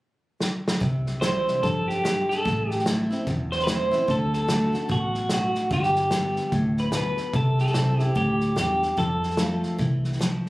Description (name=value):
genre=honky-tonk and classic country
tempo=147 BPM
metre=4/4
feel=swing 61% on 8ths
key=C major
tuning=A4 = 440 Hz
part: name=natural country drum kit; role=drums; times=0.4-10.5 s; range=hi-hat, kick drum, snare drum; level=-29 LUFS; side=equal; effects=none
part: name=picked steel-string acoustic guitar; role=accompaniment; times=0.8-10.5 s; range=E2 to G4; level=-28 LUFS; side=equal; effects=none
part: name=fingered electric bass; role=bass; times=0.8-10.4 s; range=E1 to G2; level=-27 LUFS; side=equal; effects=none
part: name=electric guitar through a small old amp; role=melody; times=1.2-9.8 s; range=F#4 to C5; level=-25 LUFS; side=equal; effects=tremolo, tape echo
room=moderate studio reverb, RT60 0.7 s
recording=recorded on a phone in the room, club reverb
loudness=-22 LUFS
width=side -18 dB against mid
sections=0.8-10.5 A section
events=drum fill 0.4-0.8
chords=0.0 N.C.; 0.8 C; 2.4 Am; 4.1 D; 5.7 G; 7.3 C; 9.0 F